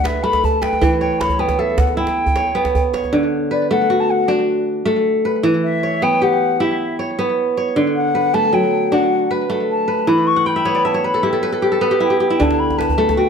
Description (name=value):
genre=west african traditional, West African string and xylophone music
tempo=104 BPM (dotted quarters)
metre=12/8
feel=straight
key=D major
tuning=A4 = 440 Hz
part: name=mellow hollow silver concert flute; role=melody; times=0.0-13.3 s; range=D5 to C#6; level=-19 LUFS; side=left 3 dB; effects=none
part: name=kora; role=arpeggios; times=0.0-13.3 s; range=D3 to G5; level=-16 LUFS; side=right 1 dB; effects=slapback echo
part: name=djembe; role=percussion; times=0.1-3.1, 12.4-13.2 s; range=none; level=-21 LUFS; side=right 2 dB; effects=none
room=light reverb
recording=close, detailed microphones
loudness=-15 LUFS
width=side -6 dB against mid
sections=0.0-3.1 A section; 3.1-13.3 B section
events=flute solo 3.1-13.3; kora fill 10.4-12.4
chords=0.0 D5; 0.8 Em; 3.1 D; 5.4 Em; 7.8 D; 10.1 Em; 12.4 D